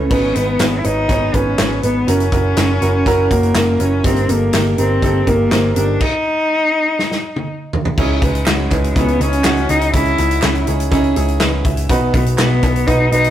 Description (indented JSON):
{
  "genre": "piano-driven pop",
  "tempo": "122 BPM",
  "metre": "4/4",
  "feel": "straight",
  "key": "unclear",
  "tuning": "A4 = 441 Hz",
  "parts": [
    { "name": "warm cello", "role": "melody", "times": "0.0-13.3 s", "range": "G#3 to E4", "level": "-18 LUFS", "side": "left 2 dB", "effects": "none" },
    { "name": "clear concert grand piano", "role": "accompaniment", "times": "0.0-13.3 s", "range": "G2 to E5", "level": "-18 LUFS", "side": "right 2 dB", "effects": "none" },
    { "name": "vintage muted picked electric bass", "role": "bass", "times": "0.0-13.3 s", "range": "F#1 to C#2", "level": "-18 LUFS", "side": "equal", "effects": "none" },
    { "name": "natural country drum kit", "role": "drums", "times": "0.1-13.3 s", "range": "crash cymbal, handclaps, hi-hat, kick drum, snare drum, toms", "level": "-19 LUFS", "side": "equal", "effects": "none" },
    { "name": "group handclap", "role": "percussion", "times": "8.5-12.8 s", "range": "none", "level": "-29 LUFS", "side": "right 3 dB", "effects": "none" }
  ],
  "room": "moderate stone room reverb, RT60 1.0 s",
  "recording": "rough rehearsal-room recording, warm saturation",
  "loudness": "-13 LUFS",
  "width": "side -11 dB against mid",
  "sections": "0.1-8.0 A section; 8.0-13.3 B section",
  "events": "stop 6.0-8.0; drum fill 7.0-8.0",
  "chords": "0.1 G#m; 2.1 F#7; 4.0 D#/G; 8.0 C#madd9; 11.9 B"
}